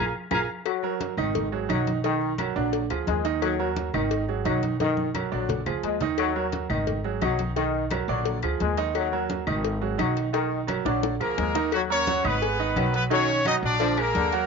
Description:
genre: latin, salsa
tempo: 173 BPM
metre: 4/4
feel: straight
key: Eb minor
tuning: A4 = 441 Hz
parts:
  - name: bright upright piano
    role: accompaniment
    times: 0.0-14.5 s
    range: D3 to Eb6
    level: -28 LUFS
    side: right 13 dB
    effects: none
  - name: upright bass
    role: bass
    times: 0.0-14.5 s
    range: Ab1 to Eb2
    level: -30 LUFS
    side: left 1 dB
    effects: none
  - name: bongos and cowbell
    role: percussion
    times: 0.3-14.5 s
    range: none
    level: -33 LUFS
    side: left 15 dB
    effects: none
  - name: claves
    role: percussion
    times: 0.3-14.2 s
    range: none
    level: -36 LUFS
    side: left 12 dB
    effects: none
  - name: congas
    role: percussion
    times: 0.3-14.5 s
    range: none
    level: -34 LUFS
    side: left 1 dB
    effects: none
  - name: clear trombone section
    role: second line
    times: 0.7-14.3 s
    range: D3 to Ab3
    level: -30 LUFS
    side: left 12 dB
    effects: none
  - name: bright horn section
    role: melody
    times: 11.2-14.5 s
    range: Gb3 to D#5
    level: -25 LUFS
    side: left 1 dB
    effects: none
room: moderate spring reverb, RT60 1.1 s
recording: 1960s-style stereo with parts hard left and right, nothing above 7.5 kHz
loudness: -23 LUFS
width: side -5 dB against mid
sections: 0.7-11.7 A section; 11.7-14.5 B section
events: drum fill 0.0-0.7, 4.8-6.2, 10.9-11.7; band accent 0.0-0.7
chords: 0.0 Bb5; 0.7 Ebm; 1.4 Abm7; 2.0 Bmaj7; 2.7 Bb7; 3.4 Ebm; 4.1 Abm7; 4.8 Bmaj7; 5.5 Bb7; 6.2 Ebm; 6.9 Abm7; 7.6 Bmaj7; 8.3 Bb7; 8.9 Ebm; 9.6 Abm7; 10.3 Bmaj7; 11.0 Bb7; 11.7 Ebm7; 12.4 Abm7; 13.1 Bmaj7; 13.8 Bb7

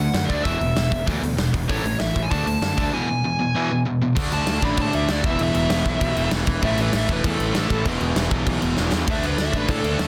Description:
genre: punk rock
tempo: 195 BPM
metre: 4/4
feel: straight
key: unclear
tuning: A4 = 440 Hz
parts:
  - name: dark smooth lead guitar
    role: melody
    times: 0.0-10.1 s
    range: A4 to B5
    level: -29 LUFS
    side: equal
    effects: overdrive
  - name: distorted electric guitar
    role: riff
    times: 0.0-10.1 s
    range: E2 to D4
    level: -30 LUFS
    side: equal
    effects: overdrive
  - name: overdriven electric guitar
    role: riff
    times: 0.0-10.1 s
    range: E2 to D4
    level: -28 LUFS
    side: equal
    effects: none
  - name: fuzz picked electric bass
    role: bass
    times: 0.0-10.1 s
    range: E1 to A2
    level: -28 LUFS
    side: equal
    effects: overdrive
  - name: big rock drum kit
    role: drums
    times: 0.1-10.1 s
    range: crash cymbal, hi-hat, kick drum, snare drum, splash cymbal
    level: -27 LUFS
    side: equal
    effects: soft clipping on kick
room: light reverb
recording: dense, heavily limited modern master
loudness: -22 LUFS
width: mono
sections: 0.0-4.2 A section; 4.2-10.1 B section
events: lead electric guitar solo 4.2-10.1; drum fill 8.8-9.1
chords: 0.5 E5; 1.7 A; 2.3 D; 2.9 E; 4.2 D5; 5.2 E5; 6.6 A5; 7.9 E5; 9.1 D5

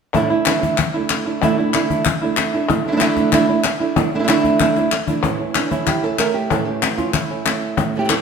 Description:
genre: flamenco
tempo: 189 BPM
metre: 4/4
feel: straight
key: A major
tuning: A4 = 441 Hz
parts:
  - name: flamenco guitar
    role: melody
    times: 0.1-8.2 s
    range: A2 to Bb4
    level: -18 LUFS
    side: right 3 dB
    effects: none
  - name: flamenco guitar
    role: stabs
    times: 0.1-8.2 s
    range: A2 to E4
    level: -26 LUFS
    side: right 4 dB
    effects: none
  - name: cajon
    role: percussion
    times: 0.1-8.2 s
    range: none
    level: -23 LUFS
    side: left 6 dB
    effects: none
  - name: palmas hand claps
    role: percussion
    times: 0.1-8.2 s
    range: none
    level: -22 LUFS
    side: left 7 dB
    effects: none
room: wet stone room reverb, RT60 1.4 s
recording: none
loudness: -16 LUFS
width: side -6 dB against mid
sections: 0.1-5.2 A section; 5.2-8.2 B section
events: drum fill 4.8-5.2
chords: 0.1 Asus4; 2.7 Dsus2; 5.2 A

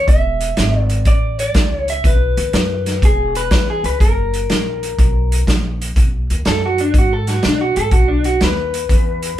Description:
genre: electric blues shuffle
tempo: 122 BPM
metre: 4/4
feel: swing 67% on 8ths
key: unclear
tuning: A4 = 442 Hz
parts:
  - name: electric guitar through a small old amp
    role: melody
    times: 0.0-9.4 s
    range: D4 to E5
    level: -19 LUFS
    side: equal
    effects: none
  - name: upright bass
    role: bass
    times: 0.0-9.3 s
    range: E1 to B2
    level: -20 LUFS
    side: equal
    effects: none
  - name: raw garage drum kit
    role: drums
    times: 0.1-9.3 s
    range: hi-hat, kick drum, snare drum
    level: -16 LUFS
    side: equal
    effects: none
room: moderate small room reverb, RT60 0.5 s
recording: band playing live in one room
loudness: -14 LUFS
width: side -12 dB against mid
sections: 0.0-6.0 A section; 6.0-9.4 B section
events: clean electric guitar solo 6.0-9.4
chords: 0.1 E7; 2.0 B; 3.0 E5; 4.0 F#; 6.0 B

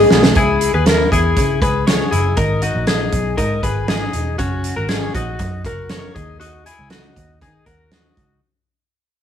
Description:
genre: jangly indie pop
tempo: 119 BPM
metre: 4/4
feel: straight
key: unclear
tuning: A4 = 439 Hz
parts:
  - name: twelve-string electric guitar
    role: arpeggios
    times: 0.0-8.4 s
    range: C#4 to C#5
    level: -20 LUFS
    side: left 4 dB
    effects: none
  - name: vintage muted picked electric bass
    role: bass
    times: 0.0-8.4 s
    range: E1 to D#3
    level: -21 LUFS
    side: right 1 dB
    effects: none
  - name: loose indie drum kit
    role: drums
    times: 0.1-8.3 s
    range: hi-hat, kick drum, snare drum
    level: -18 LUFS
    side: right 1 dB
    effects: none
room: moderate stone room reverb, RT60 0.9 s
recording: rough rehearsal-room recording, warm saturation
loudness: -15 LUFS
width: side -8 dB against mid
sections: 0.4-8.4 A section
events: drum fill 0.0-0.4; fade-out 0.4-8.4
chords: 0.4 C#m; 2.4 G#madd9; 4.4 F#; 6.2 D#m

